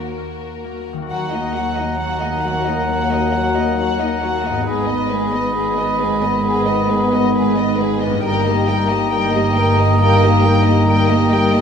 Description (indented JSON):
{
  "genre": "cinematic, emotional film score for orchestra",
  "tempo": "67 BPM",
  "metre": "4/4",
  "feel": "rubato",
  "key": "Eb minor",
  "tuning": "A4 = 440 Hz",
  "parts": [
    { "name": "rich studio violin section", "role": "melody", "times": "0.0-11.6 s", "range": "Bb4 to G5", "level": "-25 LUFS", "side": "equal", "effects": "none" },
    { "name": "dark studio violin section", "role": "second line", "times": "0.0-11.6 s", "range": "Eb4 to Cb5", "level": "-25 LUFS", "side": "left 4 dB", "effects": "none" },
    { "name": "warm studio viola section", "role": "accompaniment", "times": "0.0-11.6 s", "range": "Gb3 to Cb4", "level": "-25 LUFS", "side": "right 1 dB", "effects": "none" },
    { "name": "concert harp", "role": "arpeggios", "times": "0.0-11.6 s", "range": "G2 to Bb4", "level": "-30 LUFS", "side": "left 4 dB", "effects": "none" },
    { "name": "dark chamber cello section", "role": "bass", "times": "0.0-11.6 s", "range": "Eb2 to Ab2", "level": "-24 LUFS", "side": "right 3 dB", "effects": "none" },
    { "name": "concert flute", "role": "second line", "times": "1.1-11.6 s", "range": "Bb5 to Cb6", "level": "-23 LUFS", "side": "left 1 dB", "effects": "none" },
    { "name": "warm oboe", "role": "second line", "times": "1.1-11.6 s", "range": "Eb5 to Gb5", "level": "-25 LUFS", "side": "left 1 dB", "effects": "none" },
    { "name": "dark French horn section", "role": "sustained chords", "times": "1.1-11.6 s", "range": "Eb3 to Cb4", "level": "-21 LUFS", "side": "left 3 dB", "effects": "none" },
    { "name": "rich studio double bass section", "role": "bass", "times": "1.1-11.6 s", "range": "G1 to Eb2", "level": "-23 LUFS", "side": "right 2 dB", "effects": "none" }
  ],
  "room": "wet scoring stage reverb, RT60 1.9 s",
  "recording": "minimal, uncompressed stereo recording",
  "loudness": "-14 LUFS",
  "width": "side -7 dB against mid",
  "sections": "0.0-1.1 A section; 1.1-11.6 A section",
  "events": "none",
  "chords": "0.0 Ebm; 4.7 Abm; 8.2 Eb/G",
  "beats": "0.18 | 1.11 2.01 2.90 3.80 | 4.68 5.56 6.45 7.34 | 8.25 9.13 10.00 10.89"
}